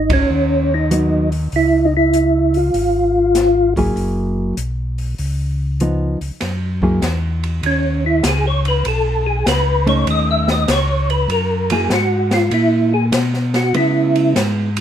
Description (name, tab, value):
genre	soul jazz organ trio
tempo	98 BPM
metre	4/4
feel	swing 67% on 8ths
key	F# mixolydian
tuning	A4 = 439 Hz
part	percussive tonewheel organ	melody	0.0-3.7, 7.7-14.3 s	C#4 to E5	-16 LUFS	equal	slow rotary speaker, chorus vibrato
part	mellow tonewheel organ	bass	0.0-14.8 s	F#1 to C#3	-19 LUFS	equal	slow rotary speaker
part	open jazz drum kit	drums	0.1-14.8 s	hi-hat, kick drum, ride cymbal, snare drum	-23 LUFS	equal	none
part	hollow-body jazz guitar	accompaniment	0.9-14.7 s	E#3 to G#4	-20 LUFS	equal	none
room	light reverb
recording	minimal, uncompressed stereo recording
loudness	-14 LUFS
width	side -9 dB against mid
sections	0.0-6.4 A section; 6.4-14.8 B section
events	band accent 0.0; tonewheel organ solo 6.4-14.8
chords	0.0 G#m7; 1.5 C#; 4.0 F#9; 5.2 C#9; 6.4 F#7(no3); 8.9 B9; 11.3 F#9; 13.7 C#m7